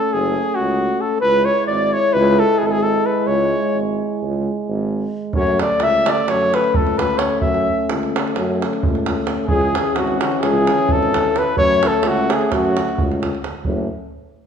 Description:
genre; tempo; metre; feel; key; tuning
balkan folk, Balkan brass band; 261 BPM (eighths); 9/8; straight; F# minor; A4 = 441 Hz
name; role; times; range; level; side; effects
mellow flugelhorn; melody; 0.0-13.2 s; F#4 to E5; -18 LUFS; equal; none
dark clarinet; second line; 0.0-13.2 s; F#4 to E5; -24 LUFS; left 4 dB; none
mellow euphonium; accompaniment; 0.0-13.9 s; C#4 to E4; -26 LUFS; left 7 dB; none
warm euphonium; accompaniment; 0.0-13.9 s; E3 to A3; -25 LUFS; right 5 dB; none
warm tuba; bass; 0.1-13.9 s; F#1 to F#2; -24 LUFS; equal; none
davul; percussion; 5.3-13.9 s; none; -22 LUFS; right 3 dB; none
room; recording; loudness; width
moderate recital hall reverb, RT60 1.4 s; minimal, uncompressed stereo recording; -16 LUFS; side -7 dB against mid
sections
0.0-13.6 A section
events
none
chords
0.0 F#m; 1.2 C#m; 5.3 F#m; 9.5 C#m; 11.6 F#m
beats
0.09 0.32 0.55 0.77 1.00 | 1.23 1.45 1.68 1.91 2.14 2.37 2.59 2.82 3.05 | 3.28 3.51 3.74 3.97 4.20 4.42 4.66 4.88 5.12 | 5.34 5.58 5.80 6.04 6.26 6.50 6.73 6.96 7.19 | 7.42 7.65 7.88 8.11 8.34 8.57 8.80 9.03 9.27 | 9.50 9.73 9.96 10.19 10.42 10.65 10.88 11.11 11.34 | 11.57 11.80 12.03 12.26 12.49 12.72 12.96 13.19 13.41 | 13.64 13.88

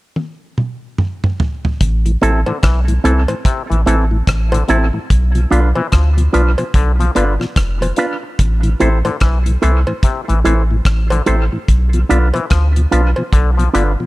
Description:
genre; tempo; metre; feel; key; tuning
roots reggae; 73 BPM; 4/4; swing 61% on 16ths; A minor; A4 = 439 Hz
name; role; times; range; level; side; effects
damped 70s drum kit; drums; 0.2-14.0 s; hi-hat, kick drum, rim click, toms; -17 LUFS; equal; none
soft dub sub bass; bass; 1.8-14.0 s; F1 to D2; -14 LUFS; equal; none
mellow tonewheel organ; accompaniment; 2.1-14.1 s; A2 to F4; -23 LUFS; left 1 dB; slow rotary speaker
electric guitar with an envelope filter; accompaniment; 2.2-13.9 s; C4 to C5; -20 LUFS; right 3 dB; tape echo
auto-wah clav; arpeggios; 2.2-13.9 s; C3 to F3; -24 LUFS; left 6 dB; none
cowbell; percussion; 2.5-13.3 s; none; -24 LUFS; equal; none
room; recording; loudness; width
small room ambience; none; -12 LUFS; side -19 dB against mid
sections
0.0-1.8 A section; 1.8-14.1 B section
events
drum fill 0.2-1.8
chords
0.0 N.C.; 1.8 Am; 5.1 Bdim; 8.4 Am; 11.7 Bdim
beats
0.16 0.98 | 1.81 2.63 3.45 4.28 | 5.10 5.92 6.74 7.57 | 8.39 9.21 10.04 10.86 | 11.68 12.51 13.33

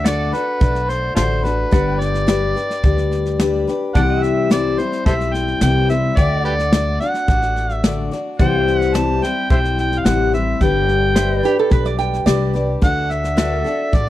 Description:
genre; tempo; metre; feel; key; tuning
honky-tonk and classic country; 108 BPM; 4/4; straight; G major; A4 = 440 Hz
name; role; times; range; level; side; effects
overdriven harmonica; melody; 0.0-14.1 s; F4 to A5; -21 LUFS; right 1 dB; none
picked steel-string acoustic guitar; accompaniment; 0.0-14.1 s; C3 to D5; -21 LUFS; left 5 dB; none
pedal steel guitar; sustained chords; 0.0-14.1 s; A4 to G5; -30 LUFS; right 2 dB; wide subtle chorus
upright bass; bass; 0.0-14.1 s; G1 to D2; -21 LUFS; equal; none
soft brush drum kit; drums; 0.1-14.1 s; hi-hat, kick drum, snare drum; -18 LUFS; equal; none
lap resonator guitar; second line; 11.5-12.7 s; G4 to G5; -20 LUFS; right 7 dB; none
room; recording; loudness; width
small room reverb; dry, close 1970s-style studio recording; -15 LUFS; side -14 dB against mid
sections
0.0-14.1 A section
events
none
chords
0.0 D; 1.7 G; 3.9 C; 6.2 D; 8.4 C; 10.6 G; 12.8 D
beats
0.06 0.61 1.17 | 1.73 2.28 2.84 3.39 | 3.95 4.50 5.06 5.62 | 6.17 6.73 7.28 7.84 | 8.39 8.95 9.50 10.06 | 10.61 11.16 11.72 12.27 | 12.82 13.38 13.93

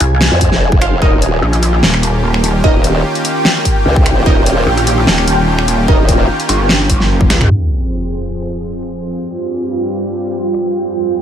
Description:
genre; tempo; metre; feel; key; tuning
heavy wobble dubstep; 148 BPM; 4/4; swing 54% on 16ths, half-time; F minor; A4 = 440 Hz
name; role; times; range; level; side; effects
pulsing pluck wobble bass; bass; 0.0-7.5 s; Eb1 to Db2; -13 LUFS; equal; chorus, overdrive
big-room dance drum kit; drums; 0.0-10.6 s; crash cymbal, finger snaps, hi-hat, snare drum, toms; -15 LUFS; equal; low-pass filter on hats, small room ambience, low-pass filter on snare, low-pass filter on toms, low-pass filter on cymbals
granular cloud pad; texture; 0.0-11.2 s; G3 to Ab5; -20 LUFS; right 1 dB; built-in reverb, sidechain pumping
formant-sweep wobble bass; bass; 0.3-6.3 s; Eb1 to F2; -14 LUFS; equal; chorus, overdrive
electronic kick drum; drums; 0.4-7.3 s; none; -13 LUFS; equal; small room ambience
orchestra-hit-like synth stab; stabs; 0.8-6.1 s; Eb4 to F5; -20 LUFS; right 2 dB; built-in reverb, tape echo
supersaw pad; sustained chords; 1.0-11.2 s; F2 to C5; -19 LUFS; equal; sidechain pumping
sub drop; sound effects; 7.5-9.1 s; none; -18 LUFS; equal; none
room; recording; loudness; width
light reverb; low-pass filter; -11 LUFS; side -9 dB against mid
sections
0.0-7.5 A section; 7.5-11.2 B section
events
drop 0.0-7.5; drum fill 7.2-7.5; impact 7.5-9.1; filter sweep 7.5-11.2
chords
0.0 Fm; 1.0 Eb7; 7.5 Fm; 9.1 Csus4/G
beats
0.21 0.61 | 1.02 1.42 1.83 2.23 | 2.64 3.04 3.45 3.86 | 4.26 4.67 5.07 5.48 | 5.88 6.29 6.69 7.10 | 7.50 7.91 8.31 8.72 | 9.13 9.53 9.94 10.34 | 10.75 11.15

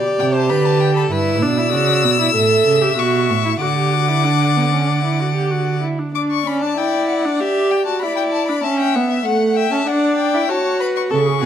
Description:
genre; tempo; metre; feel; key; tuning
classical, baroque-style fugue for string quartet; 97 BPM; 4/4; straight; D major; A4 = 440 Hz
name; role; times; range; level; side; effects
warm violin; second line; 0.0-11.5 s; G#4 to F#5; -23 LUFS; left 4 dB; none
dark viola; accompaniment; 0.0-11.5 s; A3 to A4; -18 LUFS; right 2 dB; none
warm violin; melody; 0.2-11.5 s; E5 to E6; -21 LUFS; left 10 dB; none
warm cello; bass; 0.2-5.8, 11.1-11.5 s; G2 to D3; -19 LUFS; right 5 dB; none
room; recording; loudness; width
moderate recital hall reverb, RT60 1.3 s; none; -15 LUFS; side -9 dB against mid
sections
0.0-6.2 A section; 6.2-11.5 B section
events
none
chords
0.0 G; 1.1 Em7/G; 2.4 A; 3.6 D; 7.4 Em7; 8.6 A7; 9.9 D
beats
0.50 | 1.12 1.74 2.36 2.99 | 3.62 4.25 4.89 5.52 | 6.15 6.78 7.40 8.02 | 8.64 9.26 9.88 10.50 | 11.11

